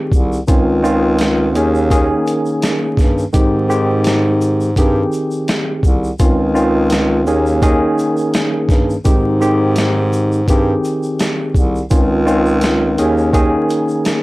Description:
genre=hip hop, boom-bap hip-hop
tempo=84 BPM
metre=4/4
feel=swing 55% on 16ths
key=Ab major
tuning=A4 = 440 Hz
part: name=tine electric piano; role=accompaniment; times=0.0-14.2 s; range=Eb3 to Ab4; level=-15 LUFS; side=equal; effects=medium stereo tremolo, high-pass filter, low-pass filter
part: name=warm bass clarinet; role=bass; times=0.1-13.5 s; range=C2 to Ab2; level=-17 LUFS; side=equal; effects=none
part: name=boom bap sampler-style drum kit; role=drums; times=0.1-14.2 s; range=hi-hat, kick drum, shaker, snare drum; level=-16 LUFS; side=equal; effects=none
part: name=tube shaker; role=percussion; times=0.1-14.2 s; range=none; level=-39 LUFS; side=left 1 dB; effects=none
room=little or no reverb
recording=dry, gritty hardware recording, vinyl crackle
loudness=-12 LUFS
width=side -20 dB against mid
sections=0.0-14.2 A section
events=none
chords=0.5 Dbmaj9; 1.6 Eb7sus4; 3.3 Abmaj7; 6.2 Dbmaj9; 7.3 Eb7sus4; 9.1 Abmaj7; 11.9 Dbmaj9; 13.0 Eb7sus4

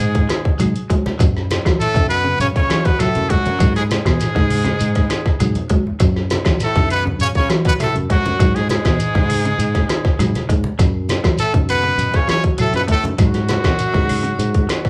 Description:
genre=afrobeat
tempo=100 BPM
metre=4/4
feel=straight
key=F# dorian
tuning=A4 = 440 Hz
part: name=bright trumpet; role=melody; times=0.0-14.9 s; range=F#4 to C#5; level=-24 LUFS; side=equal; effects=none
part: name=clear trombone section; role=second line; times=0.0-14.9 s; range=F#2 to C#3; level=-32 LUFS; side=equal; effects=none
part: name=raspy tenor saxophone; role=second line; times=0.0-14.9 s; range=F#3 to C#4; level=-33 LUFS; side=equal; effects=none
part: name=electric guitar at the edge of break-up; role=arpeggios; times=0.0-14.9 s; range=C#3 to A3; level=-27 LUFS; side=equal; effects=none
part: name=fingered electric bass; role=bass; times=0.0-14.9 s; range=F#2 to F#3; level=-25 LUFS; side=equal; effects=none
part: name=congas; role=percussion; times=0.0-14.5 s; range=none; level=-28 LUFS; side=equal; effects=none
part: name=drum and bass drum kit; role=drums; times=0.1-14.9 s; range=hi-hat, kick drum, snare drum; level=-20 LUFS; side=equal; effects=none
part: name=claves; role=percussion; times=0.3-14.9 s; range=none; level=-38 LUFS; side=equal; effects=none
part: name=shekere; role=percussion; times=0.3-14.9 s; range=none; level=-28 LUFS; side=equal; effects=none
room=moderate large studio reverb, RT60 0.8 s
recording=band playing live in one room, faint mains hum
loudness=-17 LUFS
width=mono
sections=0.0-14.9 A section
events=drum fill 5.4-6.0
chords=0.0 G#7(no3); 1.2 F#5; 3.6 G#7(no3); 6.0 F#5; 8.4 G#7(no3); 10.8 F#m7; 13.2 G#7(no3)

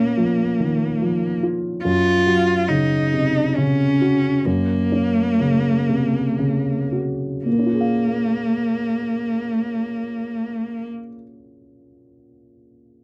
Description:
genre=neoclassical piano and strings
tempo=55-72 BPM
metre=3/4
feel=rubato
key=Bb minor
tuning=A4 = 442 Hz
part: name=rich cello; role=second line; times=0.0-10.9 s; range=Bb3 to F4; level=-23 LUFS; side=equal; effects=slapback echo
part: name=dark concert grand piano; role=accompaniment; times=0.0-13.0 s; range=Gb2 to F5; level=-23 LUFS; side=equal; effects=none
room=moderate small room reverb, RT60 0.6 s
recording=dry, close 1970s-style studio recording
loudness=-20 LUFS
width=mono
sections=0.0-7.5 A section; 7.5-10.6 B section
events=slowing down 0.6-7.5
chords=0.0 Bbm; 1.8 Gb; 7.5 Bbm7

